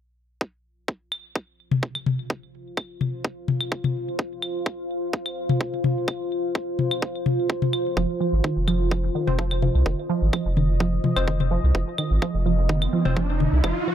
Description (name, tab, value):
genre	minimal techno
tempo	127 BPM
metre	4/4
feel	straight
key	unclear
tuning	A4 = 440 Hz
part	electronic kick drum	drums	0.4-13.7 s	none	-26 LUFS	equal	high-pass filter on kick
part	deep dark ambient pad	texture	2.6-13.9 s	F4 to F5	-29 LUFS	equal	chorus, built-in reverb, sidechain pumping
part	electronic claves and toms	percussion	1.1-13.7 s	none	-25 LUFS	left 4 dB	none
part	resonant blip pluck	riff	8.0-13.9 s	Eb3 to F3	-26 LUFS	right 4 dB	phaser, sidechain pumping, dub echo
part	saturated sub bass	bass	8.0-13.7 s	F1 to C2	-22 LUFS	equal	sidechain pumping
part	wavetable chord stab	stabs	9.3-13.2 s	C4 to C5	-32 LUFS	left 4 dB	phaser, cassette tape, ping-pong delay
part	riser	sound effects	12.5-13.9 s	none	-29 LUFS	right 2 dB	none
room	light reverb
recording	dark, warm production, faint mains hum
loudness	-22 LUFS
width	side -10 dB against mid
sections	0.4-13.9 A section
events	riser 12.5-13.9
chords	0.4 F5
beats	| 0.41 0.88 1.35 1.83 | 2.30 2.77 3.25 3.72 | 4.19 4.66 5.13 5.61 | 6.08 6.55 7.02 7.50 | 7.97 8.44 8.91 9.39 | 9.86 10.33 10.80 11.28 | 11.75 12.22 12.69 13.17 | 13.64